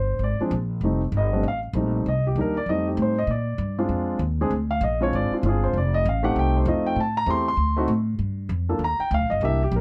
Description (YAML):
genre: jazz piano trio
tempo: 195 BPM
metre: 4/4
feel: swing 62% on 8ths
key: F mixolydian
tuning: A4 = 440 Hz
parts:
  - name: dark baby grand piano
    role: melody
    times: 0.0-9.8 s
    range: F3 to C6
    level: -26 LUFS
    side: equal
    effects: none
  - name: upright bass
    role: bass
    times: 0.0-9.8 s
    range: F1 to Bb2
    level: -27 LUFS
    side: equal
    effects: none
room: light reverb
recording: dark, warm production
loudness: -24 LUFS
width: mono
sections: 0.0-9.8 A section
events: grand piano solo 0.0-9.8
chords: 0.0 Bb7; 0.8 F7; 2.1 Cm7; 2.7 F7; 3.3 Bb7; 5.7 F7; 7.0 Am7; 7.6 D7(no3); 8.2 Gm7